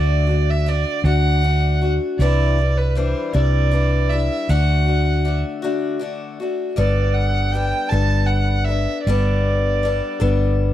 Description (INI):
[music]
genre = folk rock and heartland rock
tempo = 52 BPM (dotted quarters)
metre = 6/8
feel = straight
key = unclear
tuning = A4 = 440 Hz
[part]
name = dark fiddle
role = melody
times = 0.0-10.5 s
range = B4 to A5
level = -24 LUFS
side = right 4 dB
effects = none
[part]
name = picked acoustic archtop guitar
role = accompaniment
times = 0.0-10.7 s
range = C3 to A4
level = -23 LUFS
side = left 5 dB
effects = none
[part]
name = hollow-body short-scale fingered electric bass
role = bass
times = 0.0-10.7 s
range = G1 to D2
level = -18 LUFS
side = equal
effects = none
[sound]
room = little or no reverb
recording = dry, close 1970s-style studio recording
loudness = -17 LUFS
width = side -12 dB against mid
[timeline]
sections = 0.0-6.8 A section; 6.8-10.7 B section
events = break 5.6-6.8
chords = 0.0 D; 2.2 Cadd9; 4.5 D; 6.8 Gadd9